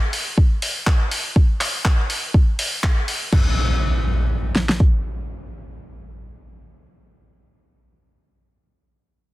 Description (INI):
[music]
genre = deep house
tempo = 122 BPM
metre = 4/4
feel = swing 56% on 16ths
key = none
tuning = none
[part]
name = dusty soul sampler-style drum kit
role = drums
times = 0.1-3.4 s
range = crash cymbal, handclaps, hi-hat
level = -24 LUFS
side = left 1 dB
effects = none
[part]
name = deep house drum kit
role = drums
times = 0.4-4.9 s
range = kick drum, snare drum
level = -16 LUFS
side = equal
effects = none
[part]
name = impact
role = sound effects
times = 3.3-7.0 s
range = none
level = -23 LUFS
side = equal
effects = none
[sound]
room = little or no reverb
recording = dense, heavily limited modern master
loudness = -17 LUFS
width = side -18 dB against mid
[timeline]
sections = 0.0-3.3 A section; 3.3-7.3 B section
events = none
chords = none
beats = 0.38 0.87 | 1.36 1.85 2.34 2.83 | 3.33 3.82 4.31 4.80 | 5.29 5.79 6.28 6.77